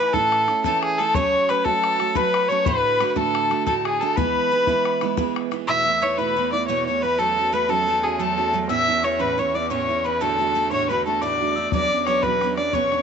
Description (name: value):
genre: celtic folk, Celtic slip jig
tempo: 119 BPM (dotted quarters)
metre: 9/8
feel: straight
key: E mixolydian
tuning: A4 = 440 Hz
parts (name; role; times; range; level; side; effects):
- dark fiddle; melody; 0.0-13.0 s; G#4 to E5; -21 LUFS; equal; tape echo
- wooden whistle; second line; 0.0-13.0 s; G#5 to E6; -27 LUFS; left 14 dB; none
- picked steel-string acoustic guitar; accompaniment; 0.0-13.0 s; D2 to F#4; -26 LUFS; right 13 dB; none
- bodhran; percussion; 0.1-5.6, 11.7-13.0 s; none; -28 LUFS; left 6 dB; none
- rich cello; drone; 5.7-13.0 s; E2; -34 LUFS; left 1 dB; none
room: light reverb, small room ambience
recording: 1960s-style stereo with parts hard left and right, nothing above 8.0 kHz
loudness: -19 LUFS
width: side -7 dB against mid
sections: 0.0-5.7 A section; 5.7-13.0 B section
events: none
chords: 0.0 A; 1.1 F#m; 2.7 D; 4.2 E; 5.7 Esus4; 7.2 F#m; 8.7 Aadd9; 10.2 D; 11.7 Bmadd9